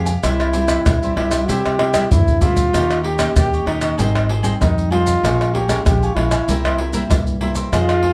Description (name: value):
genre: samba and choro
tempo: 96 BPM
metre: 4/4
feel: straight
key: unclear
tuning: A4 = 444 Hz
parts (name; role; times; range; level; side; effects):
- cavaquinho; accompaniment; 0.0-8.1 s; Eb4 to Ab5; -30 LUFS; equal; none
- nylon-string guitar; accompaniment; 0.0-8.1 s; G2 to Ab4; -27 LUFS; equal; none
- upright bass; bass; 0.0-8.1 s; Ab1 to C3; -24 LUFS; equal; none
- maracas, surdo, pandeiro and tamborim; percussion; 0.1-8.1 s; none; -21 LUFS; equal; none
- breathy trombone; melody; 0.3-8.1 s; Eb4 to G4; -23 LUFS; equal; none
room: moderate studio ambience, RT60 0.5 s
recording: heard from further back in the room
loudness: -17 LUFS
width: mono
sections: 0.0-8.1 A section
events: drum fill 1.8-2.7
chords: 0.2 C; 2.7 Eb7; 4.0 Abmaj7; 5.2 Bbm7; 6.5 C7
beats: | 0.24 0.86 1.49 2.11 | 2.74 3.36 3.98 4.61 | 5.23 5.85 6.48 7.10 | 7.72